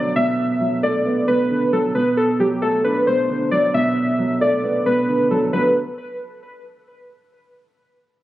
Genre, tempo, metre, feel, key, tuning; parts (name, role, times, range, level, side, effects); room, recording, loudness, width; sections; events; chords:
hip hop; 134 BPM; 4/4; half-time; B phrygian; A4 = 440 Hz
warbly lo-fi synth keys; melody; 0.0-5.7 s; G4 to E5; -20 LUFS; equal; chorus, low-pass filter, tape echo
dark grand piano; accompaniment; 0.0-5.7 s; B2 to D4; -20 LUFS; right 1 dB; low-pass filter
light reverb, small room ambience; recorded on a phone in the room, club reverb, compression; -16 LUFS; side -14 dB against mid
0.0-5.5 A section; 5.5-7.3 B section
0.0 Bm7